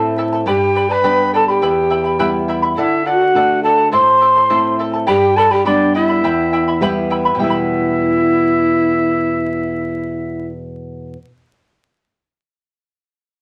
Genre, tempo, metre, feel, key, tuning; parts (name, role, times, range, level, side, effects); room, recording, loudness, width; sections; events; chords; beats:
andean folk; 104 BPM; 2/4; straight; E minor; A4 = 442 Hz
quena; melody; 0.0-10.5 s; D5 to C6; -19 LUFS; equal
breathy mellow pan flute; second line; 0.0-10.5 s; D4 to C5; -19 LUFS; equal
charango; accompaniment; 0.0-11.3 s; E4 to B5; -24 LUFS; equal
nylon-string guitar; accompaniment; 0.0-11.2 s; E2 to B4; -23 LUFS; equal
moderate club reverb, RT60 0.5 s; vinyl crackle; -15 LUFS; mono
0.0-7.4 A section; 7.4-9.7 B section
nylon-string guitar fill 6.5-7.4
0.5 G; 1.6 Em; 2.8 D; 3.9 Am; 5.1 G; 6.2 Em
| 0.46 1.04 | 1.62 2.20 | 2.77 3.35 | 3.93 4.51 | 5.08 5.66 | 6.24 6.82 | 7.40 7.97 | 8.55 9.13